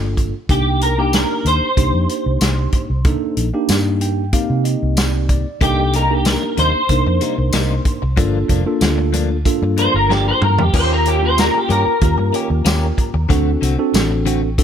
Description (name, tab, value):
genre	straight-eighth soul blues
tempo	94 BPM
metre	4/4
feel	straight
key	unclear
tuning	A4 = 440 Hz
part	mellow tine electric piano	accompaniment	0.0-14.6 s	Bb3 to G5	-21 LUFS	right 1 dB	slow stereo tremolo
part	vintage muted fingered electric bass	bass	0.0-14.6 s	F1 to C3	-18 LUFS	equal	none
part	warm soul drum kit	drums	0.2-14.6 s	hi-hat, kick drum, snare drum, splash cymbal, tambourine, toms	-19 LUFS	equal	none
part	electric guitar through a small old amp	melody	0.5-13.3 s	G4 to C5	-19 LUFS	equal	ensemble chorus
part	direct-recorded clean electric guitar	stabs	5.6-14.5 s	G2 to G4	-25 LUFS	left 7 dB	tremolo
room	little or no reverb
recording	none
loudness	-14 LUFS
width	side -8 dB against mid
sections	0.0-14.6 A section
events	clean electric guitar solo 0.0-14.6; tine electric piano fill 3.7-5.6; drum fill 10.1-10.7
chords	0.5 Cm7; 8.2 Gm7; 10.7 Eb7; 13.3 D7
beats	| 0.50 1.14 1.78 2.42 | 3.06 3.70 4.34 4.98 | 5.62 6.26 6.90 7.54 | 8.18 8.82 9.46 10.10 | 10.74 11.38 12.02 12.66 | 13.30 13.94 14.59